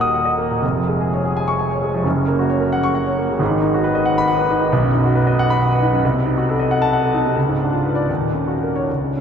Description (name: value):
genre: classical, romantic character piece for solo piano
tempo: 74-94 BPM (dotted quarters)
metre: 6/8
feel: rubato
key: unclear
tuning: A4 = 440 Hz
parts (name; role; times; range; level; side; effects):
- warm concert grand piano; solo; 0.0-9.2 s; Eb1 to Eb6; -16 LUFS; equal; none
room: wet huge ambient reverb, RT60 8.1 s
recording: in a vast, echoing space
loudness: -16 LUFS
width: side -7 dB against mid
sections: 0.0-9.2 A section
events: none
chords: 0.0 Ebm; 0.6 Db/F; 2.0 Gb; 3.4 Abm7; 4.7 B; 6.0 Cdim7; 7.4 C#7b9; 8.1 D#m7